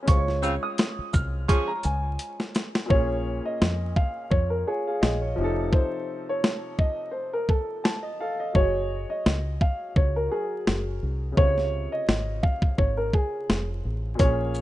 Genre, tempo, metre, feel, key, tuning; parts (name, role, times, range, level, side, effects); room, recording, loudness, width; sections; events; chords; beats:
hip hop, boom-bap hip-hop; 85 BPM; 4/4; swing 55% on 16ths; A4 = 440 Hz
warm grand piano; accompaniment; 0.0-14.6 s; Bb2 to A5; -32 LUFS; left 1 dB; cassette tape, high-pass filter, low-pass filter
dark upright piano; melody; 0.1-14.6 s; Ab4 to F6; -29 LUFS; equal; high-pass filter, low-pass filter, ping-pong delay
deep dub fingered electric bass; bass; 0.1-14.6 s; F1 to F2; -28 LUFS; equal
boom bap sampler-style drum kit; drums; 0.1-14.6 s; hi-hat, kick drum, shaker, snare drum; -22 LUFS; equal
mellow saxophone section; stabs; 0.4-1.7 s; Db3 to Ab4; -29 LUFS; right 1 dB; high-pass filter, low-pass filter
small room ambience; rough home demo mix, vinyl crackle, nothing above 10.5 kHz; -23 LUFS; side -15 dB against mid
0.0-2.9 A section; 2.9-14.6 B section
drum fill 2.2-2.9; hi-hats muted 2.9-14.2
0.1 Dbmaj7; 2.9 Bbm7; 5.4 F7; 8.6 Gbsus2; 11.4 Dbmaj7
| 0.08 0.79 1.49 2.20 | 2.90 3.61 4.32 5.02 | 5.73 6.43 7.14 7.84 | 8.55 9.26 9.96 10.67 | 11.37 12.08 12.79 13.49 | 14.20